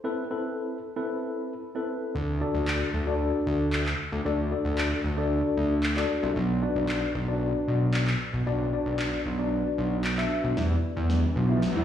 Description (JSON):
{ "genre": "dance-pop", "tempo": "114 BPM", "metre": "4/4", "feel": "straight", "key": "E minor", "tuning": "A4 = 439 Hz", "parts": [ { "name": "mellow tine electric piano", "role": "accompaniment", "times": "0.0-11.8 s", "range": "C4 to E5", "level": "-29 LUFS", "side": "left 2 dB", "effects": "medium stereo tremolo, low-pass filter" }, { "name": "fat analog bass", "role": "bass", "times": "2.1-11.8 s", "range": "B1 to E2", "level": "-26 LUFS", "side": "equal", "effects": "none" }, { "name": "electronic handclaps and snare drum", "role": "drums", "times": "2.7-11.7 s", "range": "none", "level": "-32 LUFS", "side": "equal", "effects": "none" }, { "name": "phased string machine", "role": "sustained chords", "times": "10.6-11.8 s", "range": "E3 to G4", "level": "-32 LUFS", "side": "right 3 dB", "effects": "ensemble chorus, phaser, low-pass filter" }, { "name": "riser", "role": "sound effects", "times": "11.2-11.8 s", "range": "none", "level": "-35 LUFS", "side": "equal", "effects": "none" } ], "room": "light reverb", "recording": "played on a big sound system in a bare room, large studio reverb, small room reverb", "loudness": "-25 LUFS", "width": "side -10 dB against mid", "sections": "0.0-10.6 A section; 10.6-11.8 B section", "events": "build-up 10.6-11.8; drum fill 10.6-11.8; riser 11.2-11.8", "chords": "0.0 Amadd9; 2.1 D; 6.4 Bm; 10.6 Em7" }